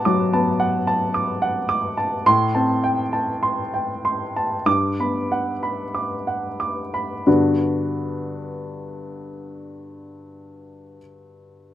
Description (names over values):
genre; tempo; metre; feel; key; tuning
neoclassical minimalist piano; 45-57 BPM; 4/4; rubato; G major; A4 = 440 Hz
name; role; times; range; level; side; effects
dark upright piano; solo; 0.0-11.7 s; G2 to D6; -20 LUFS; equal; none
room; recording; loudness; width
studio reverb; rough home demo mix; -19 LUFS; side -12 dB against mid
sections
0.0-7.3 A section; 7.3-11.7 B section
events
slowing down 0.0-7.3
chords
0.0 Bm7; 2.3 Am7; 4.7 Gmaj7